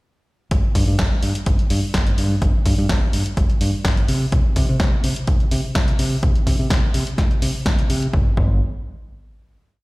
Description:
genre	filtered disco house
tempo	126 BPM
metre	4/4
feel	straight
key	unclear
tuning	A4 = 443 Hz
part	fingered electric bass	bass	0.5-8.6 s	G1 to C3	-21 LUFS	equal	tube saturation, sidechain pumping, low-pass filter
part	electronic kick drum	drums	0.5-8.5 s	none	-19 LUFS	equal	none
part	punchy analog drum machine	drums	0.5-8.1 s	hi-hat, snare drum	-26 LUFS	equal	sidechain pumping on hats
room	little or no reverb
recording	played on a big sound system in a bare room, large studio reverb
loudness	-16 LUFS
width	side -22 dB against mid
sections	0.5-8.1 groove; 8.1-9.8 final note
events	filter sweep on fingered electric bass 0.5-8.1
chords	none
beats	| 0.51 0.99 1.47 1.94 | 2.42 2.90 3.37 3.85 | 4.32 4.80 5.28 5.75 | 6.23 6.71 7.18 7.66 | 8.13

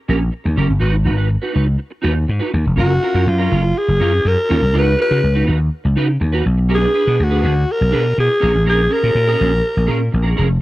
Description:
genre	disco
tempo	122 BPM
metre	4/4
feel	straight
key	F# major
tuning	A4 = 436 Hz
part	clean electric guitar	accompaniment	0.1-10.5 s	C#4 to B4	-22 LUFS	right 3 dB	ensemble chorus
part	vintage slap bass	bass	0.1-10.6 s	E#1 to C#3	-15 LUFS	equal	none
part	breathy alto saxophone	melody	2.8-10.4 s	E#4 to B4	-17 LUFS	equal	slapback echo
room	small room ambience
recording	dry, close 1970s-style studio recording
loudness	-14 LUFS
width	side -17 dB against mid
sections	0.0-2.8 A section; 2.8-10.6 B section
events	none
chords	0.0 D#7 (rootless); 0.8 G#m7; 2.8 F#maj7; 4.7 C#9sus4; 6.5 Bm6; 8.4 A#m7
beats	0.34 | 0.83 1.32 1.81 2.30 | 2.79 3.28 3.77 4.26 | 4.75 5.24 5.73 6.22 | 6.71 7.20 7.69 8.18 | 8.66 9.15 9.64 10.13

